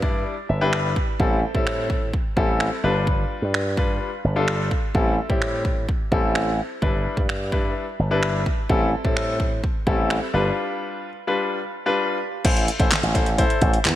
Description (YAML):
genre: dance-pop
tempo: 128 BPM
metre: 4/4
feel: straight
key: A minor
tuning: A4 = 440 Hz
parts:
  - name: clear baby grand piano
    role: accompaniment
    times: 0.0-13.7 s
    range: G3 to B5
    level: -24 LUFS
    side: left 2 dB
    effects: sidechain pumping
  - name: slap bass with an envelope filter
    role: bass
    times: 0.0-14.0 s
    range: G1 to A2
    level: -23 LUFS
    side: equal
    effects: sidechain pumping
  - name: pop drum kit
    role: drums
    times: 0.0-14.0 s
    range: crash cymbal, finger snaps, handclaps, hi-hat, kick drum, snare drum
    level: -23 LUFS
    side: equal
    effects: none
room: light reverb, digital ambience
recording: none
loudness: -20 LUFS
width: side -13 dB against mid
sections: 0.0-12.4 A section; 12.4-14.0 B section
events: grand piano fill 0.3-1.2; break 10.6-12.4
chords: 0.0 Em7/G; 1.2 Am7; 2.8 G7; 4.9 Am7; 6.8 Em7/G; 8.7 Am7; 10.3 G7; 12.4 Am